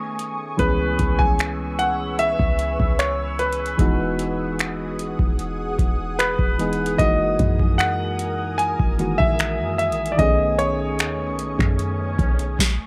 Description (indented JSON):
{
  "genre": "contemporary R&B",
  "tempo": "75 BPM",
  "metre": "4/4",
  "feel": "straight",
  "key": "C# minor",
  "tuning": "A4 = 440 Hz",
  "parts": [
    { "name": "soft electric-piano-like synth keys", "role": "accompaniment", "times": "0.0-12.6 s", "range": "D#3 to G#4", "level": "-29 LUFS", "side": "equal", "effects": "chorus" },
    { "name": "ethereal airy pad", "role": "sustained chords", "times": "0.0-12.6 s", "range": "A3 to E6", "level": "-34 LUFS", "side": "equal", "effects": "ensemble chorus, built-in reverb" },
    { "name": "booming analog drum machine", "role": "drums", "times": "0.2-12.8 s", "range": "finger snaps, hi-hat, kick drum, snare drum", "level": "-24 LUFS", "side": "equal", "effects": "none" },
    { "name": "clear concert grand piano", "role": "melody", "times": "0.6-11.3 s", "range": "B4 to G#5", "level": "-25 LUFS", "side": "equal", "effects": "none" },
    { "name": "clean 808-style bass", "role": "bass", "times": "0.6-12.6 s", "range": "E1 to F#2", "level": "-29 LUFS", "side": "equal", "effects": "none" },
    { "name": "swell", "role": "sound effects", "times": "11.2-12.6 s", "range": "none", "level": "-38 LUFS", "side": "equal", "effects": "none" }
  ],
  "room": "light reverb, digital ambience",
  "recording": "none",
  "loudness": "-21 LUFS",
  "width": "mono",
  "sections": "0.0-12.9 A section",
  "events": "break 0.0-0.6; swell 11.2-12.9",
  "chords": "0.0 B13; 0.6 C#m7; 3.8 Emaj9; 7.0 F#13; 10.2 B13"
}